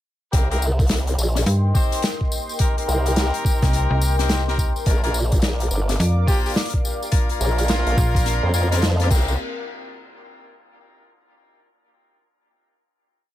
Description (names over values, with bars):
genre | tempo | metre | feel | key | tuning
glitch hop | 106 BPM | 4/4 | swing 63% on 16ths | C minor | A4 = 443 Hz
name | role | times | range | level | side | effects
dark analog pad | sustained chords | 1.1-9.4 s | Bb4 to D6 | -30 LUFS | left 1 dB | chorus, vintage 12-bit sampler grit, sidechain pumping
clear horn section | stabs | 0.3-9.3 s | Bb3 to C5 | -28 LUFS | left 2 dB | vintage 12-bit sampler grit, sidechain pumping, tape echo
formant-sweep wobble bass | bass | 0.3-9.4 s | G1 to F2 | -20 LUFS | equal | chorus, tube saturation
electronic kick drum | drums | 0.3-9.2 s | none | -20 LUFS | equal | none
loose indie drum kit | drums | 0.3-9.2 s | crash cymbal, hi-hat, snare drum | -26 LUFS | left 2 dB | none
tambourine | percussion | 0.3-9.4 s | none | -32 LUFS | left 3 dB | none
slap-like FM bass | bass | 1.5-8.4 s | Bb1 to G2 | -19 LUFS | equal | none
mellow trumpet | melody | 6.3-8.3 s | F4 to G4 | -31 LUFS | right 2 dB | tape echo
room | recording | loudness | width
little or no reverb | none | -18 LUFS | side -14 dB against mid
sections
0.3-9.4 drop; 9.4-11.7 final hit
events
drop 0.3-9.4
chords
0.3 Cm7; 4.9 Bb; 9.1 Cm7; 9.4 N.C.